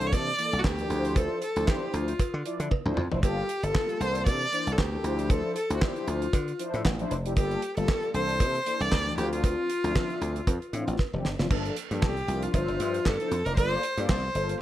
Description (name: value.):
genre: early-eighties boogie funk.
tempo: 116 BPM.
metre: 4/4.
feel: swing 56% on 16ths.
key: unclear.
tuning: A4 = 440 Hz.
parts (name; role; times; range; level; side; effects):
clear viola; melody; 0.0-14.6 s; F4 to D5; -30 LUFS; equal; slapback echo.
mellow synth brass; accompaniment; 0.0-14.6 s; E3 to E5; -33 LUFS; left 2 dB; chorus.
dry thumbed slap bass; bass; 0.0-14.5 s; F1 to D3; -31 LUFS; equal; none.
damped 70s drum kit; drums; 0.0-14.6 s; crash cymbal, handclaps, hi-hat, kick drum, snare drum, toms; -28 LUFS; equal; gated reverb.
cowbell; percussion; 0.1-14.2 s; none; -39 LUFS; right 8 dB; none.
room: small room reverb.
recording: none.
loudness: -25 LUFS.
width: side -13 dB against mid.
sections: 0.0-11.5 A section; 11.5-14.6 B section.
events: drum fill 2.7-3.2, 11.0-11.5.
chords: 0.0 C13; 0.9 Dm9; 3.2 Gm9; 4.0 C13; 5.0 Dm9; 7.4 Gm9; 8.1 C13; 9.2 Dm9; 11.5 C13sus4/G; 12.5 Dm9/G; 13.6 C13sus4/G.